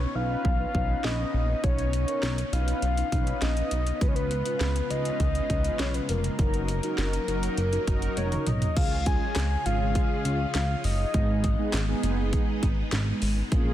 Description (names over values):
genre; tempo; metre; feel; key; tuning
synth-pop; 101 BPM; 4/4; straight; unclear; A4 = 440 Hz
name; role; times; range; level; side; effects
soft octave-layered synth lead; melody; 0.0-12.0 s; A#4 to G#5; -32 LUFS; left 2 dB; chorus, tape echo
string machine, full ensemble; sustained chords; 0.0-13.7 s; C#3 to A#4; -35 LUFS; equal; ensemble chorus
chorused synth bass; bass; 0.0-13.7 s; E#1 to C#2; -28 LUFS; equal; none
mellow synth brass; accompaniment; 0.2-13.7 s; G#3 to C#5; -33 LUFS; right 1 dB; chorus
house drum kit; drums; 0.4-13.7 s; crash cymbal, handclaps, hi-hat, kick drum, snare drum, toms; -29 LUFS; equal; none
room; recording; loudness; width
light reverb; dense, heavily limited modern master; -24 LUFS; side -12 dB against mid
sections
0.0-8.8 A section; 8.8-13.7 B section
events
drum fill 8.2-8.8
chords
0.0 Badd9; 4.0 C#7; 6.4 F#6; 8.8 C#; 11.1 G#m